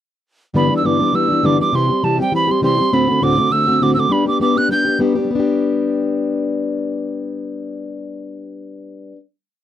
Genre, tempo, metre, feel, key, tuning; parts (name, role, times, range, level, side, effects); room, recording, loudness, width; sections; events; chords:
celtic folk, Celtic reel; 203 BPM; 4/4; swing 54% on 8ths; G major; A4 = 440 Hz
fingerpicked plugged-in steel-string acoustic guitar; accompaniment; 0.5-9.2 s; D2 to G4; -17 LUFS; left 2 dB
wooden whistle; melody; 0.6-5.0 s; G5 to G6; -17 LUFS; right 3 dB
light reverb; dry, close 1970s-style studio recording; -14 LUFS; side -11 dB against mid
0.5-5.3 A section; 5.3-7.7 final chord
0.5 G6; 1.7 C; 2.9 D7; 4.1 G